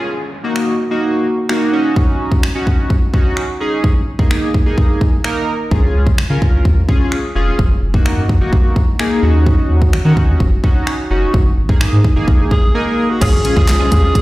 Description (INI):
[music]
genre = dance-pop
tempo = 128 BPM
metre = 4/4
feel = straight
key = Db major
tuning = A4 = 440 Hz
[part]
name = chorused polysynth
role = accompaniment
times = 0.0-14.2 s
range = Bb3 to Bb4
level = -18 LUFS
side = equal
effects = sidechain pumping
[part]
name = downlifter and impact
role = sound effects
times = 0.0-2.0, 13.2-14.2 s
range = none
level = -25 LUFS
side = equal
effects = none
[part]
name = pop drum kit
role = drums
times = 0.6-14.2 s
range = crash cymbal, finger snaps, handclaps, hi-hat, kick drum, snare drum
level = -14 LUFS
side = equal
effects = none
[part]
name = round analog bass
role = bass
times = 5.7-14.1 s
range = F1 to Eb3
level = -14 LUFS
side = equal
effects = sidechain pumping
[part]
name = bright alto saxophone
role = melody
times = 12.5-14.2 s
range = Gb4 to Bb4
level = -18 LUFS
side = equal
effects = none
[part]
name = supersaw pad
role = sustained chords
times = 13.2-14.2 s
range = Db3 to F4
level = -24 LUFS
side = equal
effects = sidechain pumping
[part]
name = thumb-piano-like synth pluck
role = arpeggios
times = 13.2-14.1 s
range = F3 to F6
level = -27 LUFS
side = left 4 dB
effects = none
[part]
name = direct-recorded clean electric guitar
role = riff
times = 13.2-14.2 s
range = Db4 to Ab4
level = -25 LUFS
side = right 3 dB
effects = ensemble chorus
[sound]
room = light reverb, digital ambience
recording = played on a big sound system in a bare room, large studio reverb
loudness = -12 LUFS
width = side -18 dB against mid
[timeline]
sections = 0.0-13.2 A section; 13.2-14.2 B section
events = break 12.7-13.2; impact 13.2-14.2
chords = 0.1 Gb6; 1.7 Ebm7; 3.8 Absus2; 5.7 Db; 7.6 Gb6; 9.2 Ebm7; 11.3 Absus2; 13.2 Db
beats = | 0.09 0.56 1.03 1.50 | 1.97 2.43 2.90 3.37 | 3.84 4.31 4.78 5.25 | 5.71 6.18 6.65 7.12 | 7.59 8.06 8.53 9.00 | 9.46 9.93 10.40 10.87 | 11.34 11.81 12.28 12.75 | 13.21 13.68 14.15